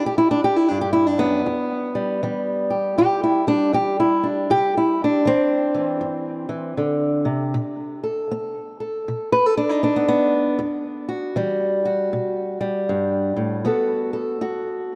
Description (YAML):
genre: acoustic country blues, solo or duo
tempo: 79 BPM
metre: 4/4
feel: swing 62% on 8ths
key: E minor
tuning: A4 = 440 Hz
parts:
  - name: fingerpicked old ladder-braced acoustic guitar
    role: solo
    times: 0.0-15.0 s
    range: E2 to B4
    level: -21 LUFS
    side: equal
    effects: analog delay
room: wet plate reverb, RT60 3.3 s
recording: dreamy mix soaked in reverb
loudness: -21 LUFS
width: mono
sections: 0.0-15.0 A section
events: none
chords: 0.0 N.C.; 1.5 Em7; 4.5 C; 7.6 B7#9; 10.6 Emadd9; 13.6 B7(no3)